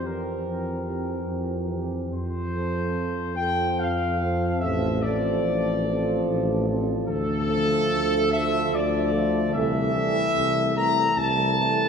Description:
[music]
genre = classical, hymn-like piece for brass band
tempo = 73 BPM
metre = 3/4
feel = rubato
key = F major, D minor from 7.1 s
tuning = A4 = 439 Hz
[part]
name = dark trumpet section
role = melody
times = 0.0-11.9 s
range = A4 to Bb5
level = -26 LUFS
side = left 2 dB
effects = none
[part]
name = mellow French horn section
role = second line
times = 0.0-11.9 s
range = G4 to A4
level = -32 LUFS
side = right 7 dB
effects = none
[part]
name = mellow euphonium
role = accompaniment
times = 0.0-11.9 s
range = A3 to C4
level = -32 LUFS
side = equal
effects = none
[part]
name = warm trombone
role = accompaniment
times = 0.0-11.9 s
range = E3 to F3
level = -32 LUFS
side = right 3 dB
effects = none
[part]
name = mellow tuba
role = bass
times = 0.0-11.9 s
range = A1 to F2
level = -27 LUFS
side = equal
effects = none
[sound]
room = wet church reverb, RT60 2.9 s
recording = recorded in a church or concert hall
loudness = -22 LUFS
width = side -6 dB against mid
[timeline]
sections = 0.0-11.9 A section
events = none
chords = 0.0 C7/F; 2.1 F; 4.6 F/A; 7.1 Dm; 9.5 Am/C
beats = 0.47 1.29 | 2.13 2.97 3.81 | 4.63 5.45 6.29 | 7.09 7.91 8.73 | 9.55 10.36 11.18

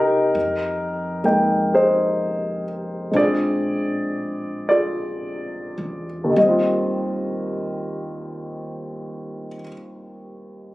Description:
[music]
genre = jazz ballad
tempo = 34-46 BPM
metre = 4/4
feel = swing 66% on 8ths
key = Eb major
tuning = A4 = 441 Hz
[part]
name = warm grand piano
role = accompaniment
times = 0.0-10.7 s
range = Eb2 to G5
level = -20 LUFS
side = equal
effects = none
[part]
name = upright bass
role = bass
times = 0.0-9.6 s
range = Bb1 to F2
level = -33 LUFS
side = right 1 dB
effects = none
[sound]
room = light reverb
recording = recorded on a phone in the room, club reverb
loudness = -19 LUFS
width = side -18 dB against mid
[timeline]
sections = 0.4-6.4 A section; 6.4-10.7 B section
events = slowing down 0.0-6.4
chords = 0.4 Fm11; 3.1 Bb9; 6.4 Eb69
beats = | 0.36 1.71 3.15 4.68 | 6.36 8.12 9.87

